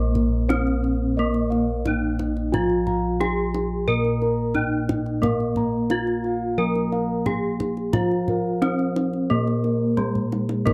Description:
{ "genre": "Javanese gamelan", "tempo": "88 BPM", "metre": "4/4", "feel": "straight", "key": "Bb slendro", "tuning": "A4 = 440 Hz", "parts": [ { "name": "gamelan-type bronze metallophone", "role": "melody", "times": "0.0-10.7 s", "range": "Ab3-45c to Bb4", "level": "-27 LUFS", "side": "equal", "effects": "none" }, { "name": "gamelan-type bronze metallophone", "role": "accompaniment", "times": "0.0-10.7 s", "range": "F3+25c to Bb3", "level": "-31 LUFS", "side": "equal", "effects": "none" }, { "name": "gamelan-type bossed gongs", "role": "arpeggios", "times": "0.0-10.7 s", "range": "Ab4-45c to Bb5", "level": "-35 LUFS", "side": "equal", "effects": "none" }, { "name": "gamelan-type bronze metallophone", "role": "arpeggios", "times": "0.0-10.7 s", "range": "Ab4-45c to Bb5", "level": "-37 LUFS", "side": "equal", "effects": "none" }, { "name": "gamelan-type bossed gongs", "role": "bass", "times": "0.0-10.7 s", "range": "Bb1 to Bb4", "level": "-28 LUFS", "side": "equal", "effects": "none" }, { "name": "kendang", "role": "percussion", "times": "0.2-10.7 s", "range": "none", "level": "-31 LUFS", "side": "equal", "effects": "none" } ], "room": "little or no reverb", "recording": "dry, close 1970s-style studio recording", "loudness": "-23 LUFS", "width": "mono", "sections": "0.0-10.7 A section", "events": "drum fill 10.1-10.7", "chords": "none" }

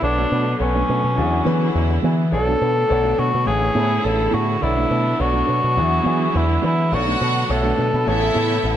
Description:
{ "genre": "disco", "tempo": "104 BPM", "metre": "4/4", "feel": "straight", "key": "B dorian", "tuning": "A4 = 440 Hz", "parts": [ { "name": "dark cor anglais", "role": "melody", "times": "0.0-8.8 s", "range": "C#4 to A4", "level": "-21 LUFS", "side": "left 1 dB", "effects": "slapback echo" }, { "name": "mellow electric guitar", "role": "accompaniment", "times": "0.0-8.7 s", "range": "A3 to D5", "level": "-28 LUFS", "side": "right 5 dB", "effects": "lush chorus" }, { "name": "warm concert grand piano", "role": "accompaniment", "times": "0.0-8.8 s", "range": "D3 to E5", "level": "-26 LUFS", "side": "left 4 dB", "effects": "none" }, { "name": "rich studio string section", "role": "sustained chords", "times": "0.0-8.8 s", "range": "B2 to G#4", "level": "-27 LUFS", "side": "right 3 dB", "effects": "none" }, { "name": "picked electric bass with an envelope filter", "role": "bass", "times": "0.0-8.8 s", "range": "A1 to E3", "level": "-21 LUFS", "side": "equal", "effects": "none" }, { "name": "rich studio violin section", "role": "second line", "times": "6.9-8.8 s", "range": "E4 to F#5", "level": "-25 LUFS", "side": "right 1 dB", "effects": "slapback echo" } ], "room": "light reverb", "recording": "none", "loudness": "-16 LUFS", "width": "side -10 dB against mid", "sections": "0.0-8.8 A section", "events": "none", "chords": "0.0 Bm9; 1.2 E9; 2.3 Bm9; 3.5 Amaj9; 4.6 Bm9; 5.8 E9; 6.9 Bm9; 8.1 Amaj9" }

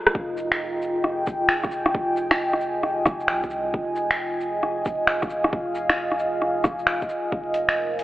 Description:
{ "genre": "future garage", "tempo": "134 BPM", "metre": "4/4", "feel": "swing 65% on 16ths", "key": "F minor", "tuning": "A4 = 440 Hz", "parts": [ { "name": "deep dark ambient pad", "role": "sustained chords", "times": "0.0-8.0 s", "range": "F4 to Bb5", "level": "-24 LUFS", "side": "equal", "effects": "chorus, built-in reverb, sidechain pumping" }, { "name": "electronic kick drum", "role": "drums", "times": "0.1-7.4 s", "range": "none", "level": "-29 LUFS", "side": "equal", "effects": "none" }, { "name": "garage drum kit", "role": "drums", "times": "0.1-8.0 s", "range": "finger snaps, hi-hat, rim click, shaker", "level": "-22 LUFS", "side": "equal", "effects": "low-pass filter on hats, low-pass filter on perc, low-pass filter on snare" }, { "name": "warm sub bass", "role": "bass", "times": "0.2-8.0 s", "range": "F1 to C2", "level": "-45 LUFS", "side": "equal", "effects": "sidechain pumping" } ], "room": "wet concert hall reverb, RT60 2.0 s", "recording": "vinyl crackle, telephone sound", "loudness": "-21 LUFS", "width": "side -16 dB against mid", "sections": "0.2-8.0 A section", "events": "break 0.0; drum fill 0.0", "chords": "0.2 Fm9; 7.3 Cm7/F" }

